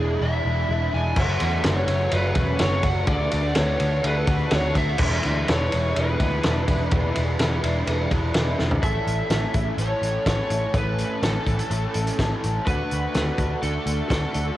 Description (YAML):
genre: rock, shoegaze and dream pop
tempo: 125 BPM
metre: 4/4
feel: straight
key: unclear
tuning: A4 = 440 Hz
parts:
  - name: lead guitar through a small cranked amp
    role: melody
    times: 0.0-14.6 s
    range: G#4 to G#5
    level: -28 LUFS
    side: equal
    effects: overdrive, cassette tape, tape echo
  - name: overdriven electric guitar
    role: riff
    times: 0.0-14.6 s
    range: E2 to A4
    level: -27 LUFS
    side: equal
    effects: analog chorus, cassette tape
  - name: vintage muted picked electric bass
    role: bass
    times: 0.0-14.5 s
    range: E1 to E2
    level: -25 LUFS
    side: equal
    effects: none
  - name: loose indie drum kit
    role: drums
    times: 1.2-14.5 s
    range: crash cymbal, hi-hat, kick drum, ride cymbal, snare drum, toms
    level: -24 LUFS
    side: equal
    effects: cassette tape
room: light reverb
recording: home recording on cassette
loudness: -20 LUFS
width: side -14 dB against mid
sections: 0.0-8.8 A section; 8.8-14.6 B section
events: drum fill 8.6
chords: 0.0 E7; 1.2 F#m7; 3.1 Dmaj7; 5.0 E7; 8.8 A; 12.7 D